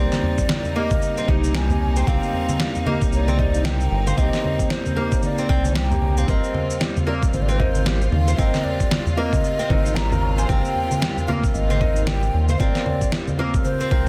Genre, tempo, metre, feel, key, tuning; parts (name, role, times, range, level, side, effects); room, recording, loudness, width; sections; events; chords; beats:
organic downtempo; 114 BPM; 4/4; swing 59% on 16ths; A4 = 440 Hz
breathy ney; melody; 0.0-14.1 s; C5 to Bb5; -30 LUFS; equal; digital delay
felt-muted upright piano; accompaniment; 0.0-14.1 s; Bb3 to Bb4; -31 LUFS; equal; sidechain pumping, tape echo
clear studio string section; sustained chords; 0.0-14.1 s; C3 to F4; -35 LUFS; equal; sidechain pumping
oud; arpeggios; 0.0-14.1 s; G3 to C5; -31 LUFS; equal; tape echo
round analog bass; bass; 0.0-14.1 s; G1 to Eb2; -23 LUFS; equal; sidechain pumping
bronze singing bowl; texture; 0.0-14.1 s; G3 to Bb4; -44 LUFS; equal
electronic snare drum, congas and cabasa; drums; 0.1-13.9 s; -29 LUFS; equal; overdrive
tabla; percussion; 0.2-14.1 s; -32 LUFS; equal
electronic kick drum; drums; 0.4-14.0 s; -25 LUFS; equal; overdrive
light reverb, small room ambience; dense, heavily limited modern master; -21 LUFS; mono
0.0-14.1 A section
0.0 Cm9; 6.3 Ab69
0.49 1.02 1.55 | 2.07 2.60 3.12 3.65 | 4.18 4.70 5.23 5.76 | 6.28 6.81 7.33 7.86 | 8.39 8.91 9.44 9.97 | 10.49 11.02 11.55 12.07 | 12.60 13.12 13.65